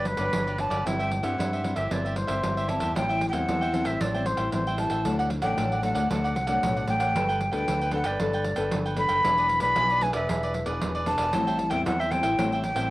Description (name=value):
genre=samba and choro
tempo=115 BPM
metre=4/4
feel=straight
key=G major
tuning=A4 = 440 Hz
part: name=breathy jazz flute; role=melody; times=0.0-12.9 s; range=B4 to B5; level=-27 LUFS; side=equal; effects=cassette tape
part: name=cavaquinho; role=accompaniment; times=0.0-12.9 s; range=D4 to G5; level=-32 LUFS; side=right 2 dB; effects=cassette tape
part: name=nylon-string guitar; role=accompaniment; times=0.0-12.9 s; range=G2 to A4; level=-30 LUFS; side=left 3 dB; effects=cassette tape
part: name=fingered electric bass with an envelope filter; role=bass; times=0.0-12.9 s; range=E1 to G2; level=-32 LUFS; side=equal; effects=none
part: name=pandeiro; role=percussion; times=0.1-12.9 s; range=none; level=-32 LUFS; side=right 2 dB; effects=none
room=light reverb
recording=home recording on cassette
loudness=-23 LUFS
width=side -18 dB against mid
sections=0.0-12.9 A section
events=none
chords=0.0 Gmaj7; 0.9 C/G; 3.0 Am7; 5.1 D; 7.2 Gadd9; 9.2 E7; 11.3 Am7